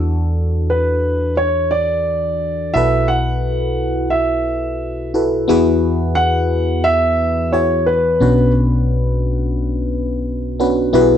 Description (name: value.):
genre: pop.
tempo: 88 BPM.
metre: 4/4.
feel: swing 55% on 16ths.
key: E mixolydian from 5.5 s.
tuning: A4 = 440 Hz.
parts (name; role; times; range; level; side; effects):
FM electric piano; accompaniment; 0.0-11.2 s; B1 to C#5; -16 LUFS; left 1 dB; chorus, phaser.
dark baby grand piano; melody; 0.7-8.5 s; B4 to F#5; -17 LUFS; right 1 dB; slapback echo.
room: light reverb.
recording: dry, close 1970s-style studio recording.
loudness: -15 LUFS.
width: side -9 dB against mid.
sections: 0.0-5.5 A section; 5.5-11.2 B section.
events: none.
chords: 0.0 D/E; 2.8 B7sus4; 5.5 Eadd9; 8.2 Bmadd9.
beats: | 0.03 0.71 1.40 2.08 | 2.76 3.44 4.12 4.80 | 5.49 6.17 6.85 7.53 | 8.21 8.90 9.58 10.26 | 10.94.